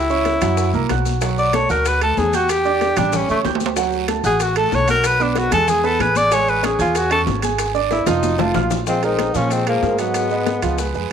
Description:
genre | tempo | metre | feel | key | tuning
Afro-Cuban jazz | 188 BPM | 4/4 | straight | unclear | A4 = 440 Hz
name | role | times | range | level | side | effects
clear tenor saxophone | melody | 0.0-10.9 s | A3 to D5 | -19 LUFS | left 2 dB | none
warm concert grand piano | accompaniment | 0.0-11.1 s | F3 to G#6 | -21 LUFS | right 10 dB | none
upright bass | bass | 0.0-11.1 s | F1 to Bb2 | -24 LUFS | left 2 dB | none
bongos | percussion | 0.1-11.1 s | none | -30 LUFS | left 12 dB | none
congas | percussion | 0.1-11.1 s | none | -28 LUFS | left 11 dB | none
maracas | percussion | 0.1-11.1 s | none | -33 LUFS | left 14 dB | none
guiro | percussion | 0.3-11.1 s | none | -36 LUFS | right 11 dB | none
timbales | percussion | 0.3-10.8 s | none | -29 LUFS | right 9 dB | none
trombone with cup mute | second line | 8.9-10.9 s | F3 to C4 | -25 LUFS | left 10 dB | none
room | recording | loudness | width
moderate plate reverb, RT60 2.4 s | 1960s-style stereo with parts hard left and right | -16 LUFS | side -8 dB against mid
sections
0.0-8.9 A section; 8.9-11.1 B section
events
tenor saxophone solo 0.0-8.9; drum fill 3.1-3.8, 7.9-8.9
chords
0.0 C#m; 0.6 F#7#11; 1.2 Bm7; 2.5 Em7; 3.1 A7; 3.8 D; 5.0 B5; 5.7 E; 6.3 Amaj7; 7.6 Fm6; 8.2 F; 8.9 Bb9sus4; 10.1 Abm7

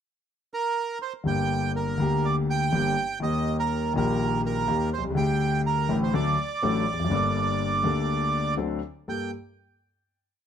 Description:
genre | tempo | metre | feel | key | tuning
tango | 123 BPM | 4/4 | rubato | G minor | A4 = 440 Hz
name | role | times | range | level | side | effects
bandoneon | melody | 0.5-9.3 s | Bb4 to G5 | -28 LUFS | right 5 dB | plate reverb
warm concert grand piano | accompaniment | 1.2-9.3 s | G1 to A4 | -25 LUFS | left 2 dB | none
room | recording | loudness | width
light reverb | none | -23 LUFS | side -8 dB against mid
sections
0.0-1.3 pickup bar; 1.3-9.1 A section; 9.1-10.5 final chord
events
none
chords
0.0 N.C.; 1.3 Gm; 3.2 Eb; 5.2 Dsus4; 6.1 D; 7.1 Gmadd9; 8.6 D7; 9.1 Gmadd9

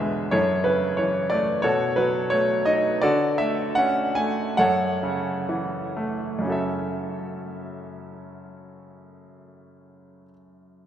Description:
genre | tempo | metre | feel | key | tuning
classical, lyrical solo piano | 62-93 BPM | 4/4 | rubato | F# minor | A4 = 440 Hz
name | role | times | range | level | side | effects
bright concert grand piano | solo | 0.0-10.9 s | E2 to G#5 | -22 LUFS | equal | none
room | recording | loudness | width
wet cathedral reverb, RT60 5.8 s | recorded in a church or concert hall | -21 LUFS | side -10 dB against mid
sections
0.0-6.4 A section; 6.4-10.2 B section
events
slowing down 0.3-6.4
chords
0.3 F#m7; 1.6 B7; 3.0 Dmaj7; 4.6 F#m7

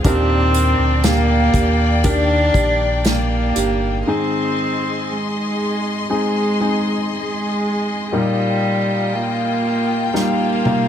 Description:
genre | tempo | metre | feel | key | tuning
pop ballad | 59 BPM | 4/4 | straight | Eb major | A4 = 440 Hz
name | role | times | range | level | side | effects
warm cello | melody | 0.0-10.9 s | G3 to D4 | -19 LUFS | right 1 dB | none
clear concert grand piano | accompaniment | 0.0-10.9 s | Ab2 to Bb4 | -22 LUFS | left 2 dB | none
rich studio string section | sustained chords | 0.0-10.9 s | F4 to C6 | -25 LUFS | left 5 dB | none
nylon-string guitar | arpeggios | 0.0-4.1 s | Eb3 to G4 | -27 LUFS | right 8 dB | none
sub bass with octave | bass | 0.0-4.0 s | G1 to Eb2 | -19 LUFS | equal | none
unplugged drum kit | drums | 0.0-3.8, 10.2-10.9 s | hi-hat, kick drum, snare drum, toms | -19 LUFS | equal | none
room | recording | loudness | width
light reverb, studio reverb | none | -16 LUFS | side -9 dB against mid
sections
0.0-4.1 A section; 4.1-10.9 B section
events
drum fill 10.2-10.9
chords
0.0 Ebmaj7; 4.1 Ab; 8.1 Ebadd9

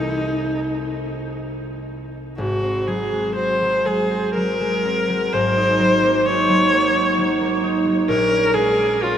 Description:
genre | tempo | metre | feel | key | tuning
classical, impressionist duo for viola and harp | 58-66 BPM | 3/4 | rubato | unclear | A4 = 444 Hz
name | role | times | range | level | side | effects
rich viola | melody | 0.0-9.2 s | Eb4 to Db5 | -19 LUFS | left 1 dB | none
concert harp | accompaniment | 0.0-9.2 s | Ab1 to Eb4 | -22 LUFS | right 1 dB | none
room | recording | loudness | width
wet huge ambient reverb, RT60 7.5 s | in a vast, echoing space | -17 LUFS | side -9 dB against mid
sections
0.0-9.2 A section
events
none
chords
0.0 Cm6; 2.4 Ab9; 5.3 Ebm7/Ab; 8.1 Bbm7

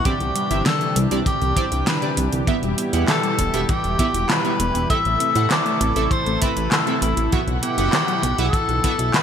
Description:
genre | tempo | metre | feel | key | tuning
synthwave | 99 BPM | 4/4 | straight | E minor | A4 = 440 Hz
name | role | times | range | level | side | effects
clear tenor saxophone | melody | 0.0-9.2 s | E4 to E5 | -23 LUFS | left 2 dB | ping-pong delay
warm analog pad | sustained chords | 0.0-9.2 s | B2 to F#5 | -27 LUFS | right 2 dB | chorus, sidechain pumping
thumb-piano-like synth pluck | arpeggios | 0.1-9.2 s | D3 to E4 | -29 LUFS | left 4 dB | chorus, ping-pong delay
chorused polysynth | stabs | 0.1-8.9 s | B3 to F#5 | -28 LUFS | right 4 dB | ping-pong delay
kick drum | drums | 0.1-9.0 s | none | -25 LUFS | equal | none
pop drum kit | drums | 0.1-9.2 s | handclaps, hi-hat, snare drum | -24 LUFS | equal | gated reverb
chorused synth bass | bass | 0.2-9.1 s | E1 to A2 | -23 LUFS | equal | none
room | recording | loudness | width
moderate lush hall reverb, RT60 2.8 s | bright 1980s-style digital production | -18 LUFS | side -8 dB against mid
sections
0.0-9.2 A section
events
none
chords
0.1 Cadd9; 2.5 Em; 4.9 Am; 7.3 Bsus4

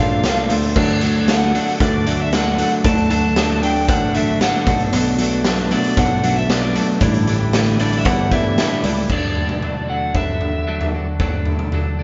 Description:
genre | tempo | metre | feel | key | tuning
indie rock | 115 BPM | 4/4 | straight | D major | A4 = 440 Hz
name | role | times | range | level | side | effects
lead guitar through a small cranked amp | melody | 0.0-10.9 s | D5 to A5 | -25 LUFS | equal | overdrive
tonewheel organ | sustained chords | 0.0-9.1 s | D3 to F#5 | -36 LUFS | equal | none
clean electric guitar | riff | 0.0-12.0 s | A2 to F#4 | -25 LUFS | equal | none
twelve-string electric guitar | riff | 0.0-12.0 s | A2 to E4 | -27 LUFS | equal | none
picked electric bass | bass | 0.0-9.0 s | A1 to E2 | -23 LUFS | equal | none
raw garage drum kit | drums | 0.2-11.8 s | crash cymbal, hi-hat, kick drum, snare drum, toms | -22 LUFS | equal | none
room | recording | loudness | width
moderate stone room reverb, RT60 1.2 s | band playing live in one room, nothing above 7.6 kHz | -18 LUFS | mono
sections
0.0-9.1 A section; 9.1-12.0 B section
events
none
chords
0.0 Bbmaj7; 0.8 D; 4.7 Bm7; 7.0 A7sus4; 9.1 D

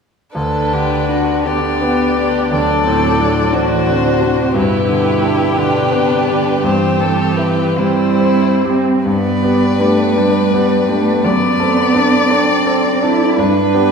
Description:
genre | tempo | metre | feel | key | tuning
classical, slow romantic movement for piano quintet | 43-60 BPM (dotted quarters) | 6/8 | rubato | G major | A4 = 441 Hz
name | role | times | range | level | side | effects
rich cello | second line | 0.3-13.9 s | B2 to E4 | -18 LUFS | right 4 dB | none
rich violin | second line | 0.3-13.9 s | E4 to D5 | -21 LUFS | left 1 dB | none
bright grand piano | accompaniment | 0.3-13.9 s | D2 to A4 | -16 LUFS | left 1 dB | none
rich violin | melody | 0.4-13.9 s | A4 to D5 | -19 LUFS | left 4 dB | none
rich viola | accompaniment | 0.4-8.8 s | B3 to E4 | -20 LUFS | right 5 dB | none
room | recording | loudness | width
wet concert hall reverb, RT60 2.0 s | heard from further back in the room | -12 LUFS | side -5 dB against mid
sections
0.3-9.1 A section; 9.1-13.9 B section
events
none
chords
0.3 G/D; 2.5 D7; 4.6 G; 6.6 C/G; 9.1 G; 11.2 D7/F#; 13.4 G

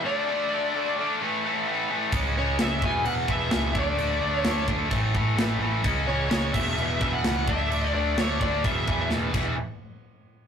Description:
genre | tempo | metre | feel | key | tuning
hard rock | 129 BPM | 4/4 | straight | E mixolydian | A4 = 438 Hz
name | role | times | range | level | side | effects
scooped high-gain guitar | riff | 0.0-9.5 s | E2 to D4 | -26 LUFS | equal | distortion
smooth overdriven lead guitar | melody | 0.1-9.1 s | C#5 to G#5 | -28 LUFS | left 1 dB | none
overdriven picked electric bass | bass | 2.1-9.6 s | E1 to A2 | -29 LUFS | equal | none
tight metal drum kit | drums | 2.1-9.4 s | crash cymbal, kick drum, snare drum | -28 LUFS | equal | none
room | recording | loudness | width
light reverb | rough rehearsal-room recording, tube saturation | -23 LUFS | side -7 dB against mid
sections
0.0-9.6 A section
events
drum fill 9.1-9.6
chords
0.0 D5; 1.2 A5; 2.1 C#5; 2.8 E5; 3.8 D5; 4.9 A5; 5.8 C#5; 6.5 E5; 7.5 D5; 8.6 E5; 9.6 N.C.

